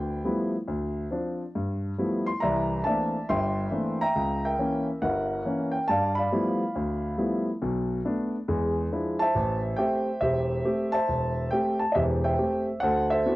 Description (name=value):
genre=solo jazz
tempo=138 BPM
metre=4/4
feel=swing 66% on 8ths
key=G mixolydian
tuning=A4 = 441 Hz
part: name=warm grand piano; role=solo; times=0.0-13.4 s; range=E1 to C6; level=-24 LUFS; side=equal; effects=none
room=light reverb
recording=home recording on cassette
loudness=-24 LUFS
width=side -18 dB against mid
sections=0.0-13.4 A section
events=none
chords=0.0 G13; 0.7 Dm7; 1.5 G13; 2.4 C13; 4.1 C#dim7; 5.9 G13; 7.6 Bm7; 8.5 E7b9; 9.3 Am7; 12.8 D13